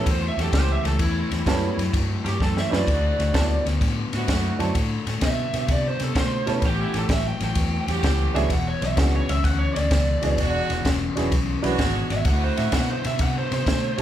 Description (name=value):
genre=electric blues shuffle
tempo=128 BPM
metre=4/4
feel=swing 68% on 8ths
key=A mixolydian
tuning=A4 = 440 Hz
part: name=lead guitar through a small cranked amp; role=melody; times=0.0-14.0 s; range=E4 to G5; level=-28 LUFS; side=right 2 dB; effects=overdrive
part: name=clear upright piano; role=accompaniment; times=0.0-14.0 s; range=F#3 to B4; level=-28 LUFS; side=right 4 dB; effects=none
part: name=overdriven semi-hollow guitar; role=riff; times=0.0-14.0 s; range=E2 to B3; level=-28 LUFS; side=left 4 dB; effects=none
part: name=fingered electric bass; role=bass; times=0.1-14.0 s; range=E1 to C3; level=-25 LUFS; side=equal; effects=none
part: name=compact cocktail drum kit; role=drums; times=0.1-14.0 s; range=kick drum, ride cymbal, snare drum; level=-25 LUFS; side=equal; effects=none
part: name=clear horn section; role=stabs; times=0.4-13.1 s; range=G#3 to G4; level=-30 LUFS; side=right 5 dB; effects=none
room=light reverb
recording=band playing live in one room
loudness=-20 LUFS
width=side -11 dB against mid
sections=0.0-14.0 A section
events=lead electric guitar solo 0.0-14.0; drum fill 2.4-2.9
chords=0.0 A9; 2.9 D9; 6.6 A9; 8.5 E9; 12.3 D9